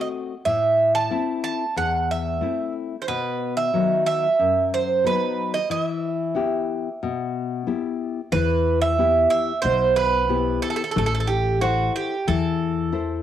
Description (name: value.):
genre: greek folk, Greek bouzouki band.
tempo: 91 BPM.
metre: 4/4.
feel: straight.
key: E harmonic minor.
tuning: A4 = 440 Hz.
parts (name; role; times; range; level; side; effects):
Greek bouzouki; melody; 0.0-13.2 s; F#4 to A5; -21 LUFS; right 4 dB; cassette tape.
nylon-string guitar; accompaniment; 0.0-13.2 s; E2 to C5; -26 LUFS; left 7 dB; none.
upright bass; bass; 8.3-13.2 s; A1 to E2; -25 LUFS; left 1 dB; none.
room: wet spring reverb, RT60 1.2 s, studio reverb.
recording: home recording on cassette.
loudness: -20 LUFS.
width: side -10 dB against mid.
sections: 0.0-8.3 A section; 8.3-13.2 A section.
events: none.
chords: 0.5 Am; 3.1 B; 5.7 Em; 11.0 Am.